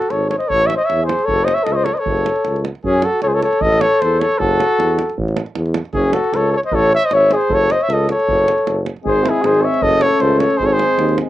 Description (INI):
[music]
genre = balkan folk, Balkan brass band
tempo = 154 BPM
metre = 2/4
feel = straight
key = F# dorian sharp4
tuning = A4 = 440 Hz
[part]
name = mellow trumpet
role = melody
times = 0.0-11.2 s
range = G#4 to E5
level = -17 LUFS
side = right 1 dB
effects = cassette tape
[part]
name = warm flugelhorn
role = second line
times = 0.0-11.2 s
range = C#4 to C#5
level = -18 LUFS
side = left 3 dB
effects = cassette tape
[part]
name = davul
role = percussion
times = 0.0-11.3 s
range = none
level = -27 LUFS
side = right 4 dB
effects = none
[part]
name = warm tuba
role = bass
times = 0.1-11.2 s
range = F#1 to F#2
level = -20 LUFS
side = equal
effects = transformer saturation
[part]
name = brilliant trombone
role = accompaniment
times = 9.0-11.3 s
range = G#3 to A3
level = -27 LUFS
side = right 6 dB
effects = cassette tape
[part]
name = mellow euphonium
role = accompaniment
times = 9.0-11.3 s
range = B#3 to C#4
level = -22 LUFS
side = left 4 dB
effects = cassette tape
[sound]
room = wet booth ambience, RT60 0.2 s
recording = home recording on cassette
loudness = -14 LUFS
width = side -14 dB against mid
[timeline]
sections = 0.0-2.8 A section; 2.8-9.1 A section; 9.1-11.3 B section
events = none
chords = 0.0 F#m69; 0.5 A5; 1.3 F#5; 3.6 A5; 4.4 F#m; 5.2 A5; 5.9 F#5; 6.7 Amaj7; 7.5 F#5; 8.3 F#m; 9.1 G#; 9.8 F#m; 10.6 G#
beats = 0.11 | 0.50 0.89 | 1.28 1.67 | 2.06 2.45 | 2.84 3.23 | 3.61 4.00 | 4.39 4.78 | 5.17 5.56 | 5.95 6.33 | 6.72 7.11 | 7.50 7.89 | 8.27 8.66 | 9.05 9.44 | 9.82 10.21 | 10.60 10.99